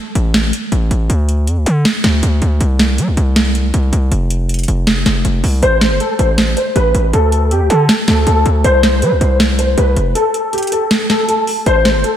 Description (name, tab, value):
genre	hip hop, trap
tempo	159 BPM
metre	4/4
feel	half-time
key	unclear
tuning	A4 = 440 Hz
part	distorted 808-style bass	bass	0.2-12.0 s	F1 to G3	-13 LUFS	equal	distortion
part	booming analog drum machine	drums	0.2-12.1 s	hi-hat, snare drum	-17 LUFS	right 1 dB	overdrive
part	dark concert grand piano	melody	5.6-12.2 s	G4 to C5	-15 LUFS	left 1 dB	ensemble chorus
room	moderate lush hall reverb, RT60 1.9 s, digital ambience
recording	dreamy mix soaked in reverb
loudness	-11 LUFS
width	side -10 dB against mid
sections	0.0-12.2 A section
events	break 0.0-5.6, 10.2-11.7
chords	0.0 N.C.; 2.6 C5; 4.1 F5; 5.6 Am; 7.1 D5; 8.6 C5; 10.2 N.C.; 11.7 Am7